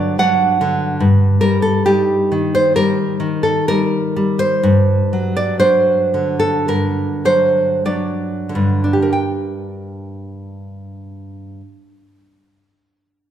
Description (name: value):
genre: romantic piece for solo classical guitar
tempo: 46-73 BPM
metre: 4/4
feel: rubato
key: G minor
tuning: A4 = 441 Hz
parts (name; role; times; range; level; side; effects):
- nylon-string guitar; solo; 0.0-12.2 s; G2 to G5; -14 LUFS; equal; none
room: wet recital hall reverb, RT60 1.6 s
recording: recorded in a church or concert hall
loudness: -14 LUFS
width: side -10 dB against mid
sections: 0.0-9.1 A section; 9.1-13.3 B section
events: slowing down 0.0-9.1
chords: 0.0 D/G; 1.0 Eb6/G; 4.6 D/G; 9.1 Gm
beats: 0.17 | 0.99 1.85 2.75 3.67 | 4.62 5.61 6.67 7.86 | 9.12 10.31 11.49